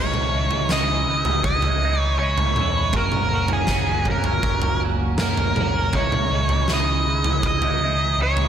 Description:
quiet-loud alternative rock; 80 BPM; 4/4; straight; C# dorian; A4 = 440 Hz
octave-fuzz lead guitar; melody; 0.0-8.5 s; G#4 to D#5; -23 LUFS; equal; distortion, slapback echo
twelve-string electric guitar; arpeggios; 0.0-8.5 s; F#2 to F#4; -27 LUFS; right 6 dB; phaser, slapback echo
overdriven picked electric bass; bass; 0.0-8.5 s; F#1 to E2; -25 LUFS; equal
huge arena drum kit; drums; 0.1-8.5 s; kick drum, snare drum, toms; -23 LUFS; equal
moderate lush hall reverb, RT60 2.6 s; big arena sound; -18 LUFS; side -9 dB against mid
0.0-8.5 A section
0.0 C#madd9; 3.0 F#; 5.9 C#madd9

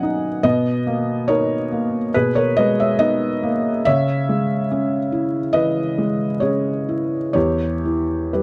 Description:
neoclassical minimalist piano; 62-72 BPM; 4/4; rubato; A4 = 440 Hz
felt-muted upright piano; solo; 0.0-8.4 s; E2 to G#5; -20 LUFS; equal
light reverb; dry, close 1970s-style studio recording, vinyl crackle; -20 LUFS; mono
0.0-8.4 A section
0.4 G#madd9/B; 3.9 C#m; 7.4 Em

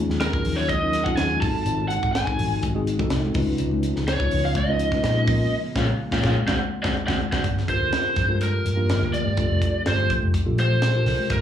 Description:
electric jazz fusion; 124 BPM; 4/4; straight; Eb minor, G minor from 7.4 s; A4 = 442 Hz
mellow tine electric piano; accompaniment; 0.0-11.4 s; Gb3 to Cb5; -28 LUFS; left 1 dB; medium stereo tremolo, slapback echo
ethereal airy pad; sustained chords; 0.0-11.4 s; C3 to G4; -34 LUFS; equal
fretless electric bass; bass; 0.0-11.4 s; F1 to Bb2; -25 LUFS; equal
tight funk drum kit; drums; 0.1-11.4 s; hi-hat, kick drum, snare drum; -27 LUFS; equal
lead guitar through a small cranked amp; melody; 0.2-11.4 s; Bb4 to A5; -25 LUFS; right 1 dB; overdrive, slapback echo
congas; percussion; 0.5-11.3 s; -33 LUFS; left 3 dB; slapback echo
light reverb; live gig heard through the venue's PA, club reverb, small room ambience; -20 LUFS; side -10 dB against mid
0.0-7.4 A section; 7.4-11.4 B section
band accent 5.5-7.4; lead electric guitar solo 7.4-11.4
0.0 Ebm11; 1.4 Ab7b9; 3.4 Db9; 5.3 Bbm7; 6.5 D7; 7.4 Gm9

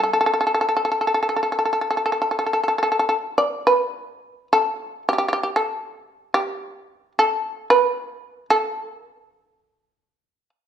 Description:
japanese traditional; 50-62 BPM; 4/4; rubato; A4 = 440 Hz
shamisen; melody; 0.0-10.5 s; G4 to D5; -19 LUFS; equal
moderate recital hall reverb, RT60 1.3 s; minimal, uncompressed stereo recording; -19 LUFS; side -9 dB against mid
0.0-4.5 A section; 4.5-10.7 B section

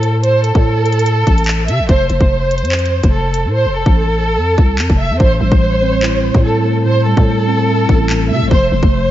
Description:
hip hop, drill; 145 BPM; 4/4; half-time; A4 = 444 Hz
dark studio violin section; melody; 0.0-9.1 s; A4 to E5; -16 LUFS; right 1 dB; tape echo
growling 808-style bass; bass; 0.0-9.1 s; F1 to C3; -16 LUFS; equal
drill drum kit; drums; 0.0-8.9 s; handclaps, hi-hat, kick drum; -15 LUFS; equal
mellow tine electric piano; accompaniment; 5.2-9.1 s; A2 to E4; -18 LUFS; equal; medium stereo tremolo
light reverb, digital ambience; nothing above 7.5 kHz; -11 LUFS; side -13 dB against mid
0.0-9.1 A section
hi-hats muted 3.5-5.2, 5.2-9.1
0.0 N.C.; 1.9 F; 5.2 Am7; 8.5 F

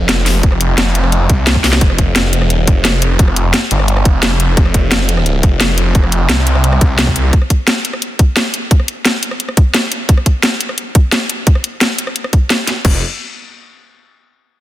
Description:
dark technical drum and bass; 174 BPM; 4/4; straight; A4 = 440 Hz
snarling distorted saw bass; bass; 0.0-7.3, 12.8-13.0 s; F1 to C2; -13 LUFS; equal; distortion, overdrive, sidechain pumping
drum and bass drum kit; drums; 0.1-12.9 s; crash cymbal, hi-hat, rim click, snare drum; -15 LUFS; left 1 dB; overdrive
electronic kick drum; drums; 0.4-12.9 s; -10 LUFS; equal; overdrive
light reverb, digital ambience; dense, heavily limited modern master; -11 LUFS; side -14 dB against mid
0.0-1.8 A section; 1.8-12.8 B section; 12.8-14.2 C section
drop 0.0-1.8; drum fill 1.6

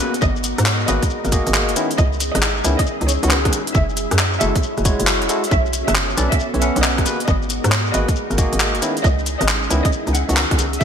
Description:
UK garage, two-step garage; 136 BPM; 4/4; swing 66% on 16ths; A4 = 438 Hz
rich studio violin section; melody; 0.0-10.8 s; B4 to A#5; -26 LUFS; right 1 dB; ping-pong delay
soft string machine; sustained chords; 0.1-10.8 s; D3 to A#4; -29 LUFS; equal; phaser, ensemble chorus, vintage 12-bit sampler grit, sidechain pumping
barky tine electric piano; stabs; 0.0-10.6 s; D#3 to F#5; -24 LUFS; left 1 dB; ping-pong delay
garage drum kit; drums; 0.0-10.8 s; handclaps, hi-hat, rim click, shaker; -21 LUFS; left 1 dB; gated reverb
warbly tape-like pad; texture; 0.0-10.8 s; B3 to E6; -29 LUFS; equal; chorus, built-in reverb, sidechain pumping
hollow knocking FM bass; bass; 0.2-10.8 s; E1 to G#2; -21 LUFS; equal; tube saturation
electronic kick drum; drums; 0.2-10.8 s; -20 LUFS; equal
moderate lush hall reverb, RT60 1.6 s; bright 1980s-style digital production; -16 LUFS; side -8 dB against mid
0.0-10.8 A section
0.0 G#m9; 1.8 C#m9; 3.7 F#m9; 5.5 Bm9; 7.1 G#m9; 8.8 C#m9

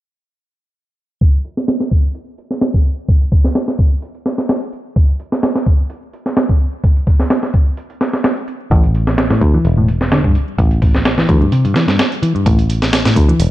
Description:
breakbeat, breaks; 128 BPM; 4/4; swing 53% on 16ths; A minor; A4 = 441 Hz
breakbeat sampler-style drum kit; drums; 1.2-13.5 s; hi-hat, kick drum, snare drum; -13 LUFS; equal; studio reverb
electronic hi-hat; drums; 1.2-13.5 s; -41 LUFS; right 6 dB
picked electric bass; riff; 8.7-13.4 s; G2 to E3; -16 LUFS; left 1 dB; overdrive
picked electric bass; bass; 8.7-13.5 s; E1 to D2; -15 LUFS; equal
little or no reverb; low-pass filter; -12 LUFS; side -15 dB against mid
1.2-13.5 A section
filter sweep 1.2-13.5
1.2 A5

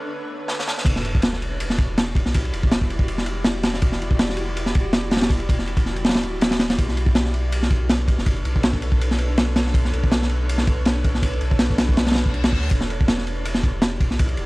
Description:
drum and bass, jungle; 162 BPM; 4/4; swing 54% on 16ths; E dorian; A4 = 443 Hz
granular cloud pad; sustained chords; 0.0-14.5 s; D4 to D5; -30 LUFS; equal; built-in reverb
crunchy breakbeat drum kit; drums; 0.5-14.5 s; crash cymbal, kick drum, ride cymbal, snare drum; -20 LUFS; equal; high-pass filter on kick, high-pass filter on cymbals, high-pass filter on snare, high-pass filter on room
saturated sub bass; bass; 0.9-14.5 s; D1 to D2; -25 LUFS; equal
sub drop and reverse cymbal; sound effects; 0.9-2.3, 12.2-12.7 s; -34 LUFS; left 1 dB
small room ambience; dry, gritty hardware recording, transformer saturation, vinyl crackle; -18 LUFS; side -22 dB against mid
0.9-14.5 A section
break 0.0-0.9; drum fill 0.5-0.9; drop 0.9-14.5; impact 0.9-2.3; reverse cymbal 12.2-12.7
0.0 Bm9; 0.9 Em9; 6.8 Bm9; 12.7 Em9

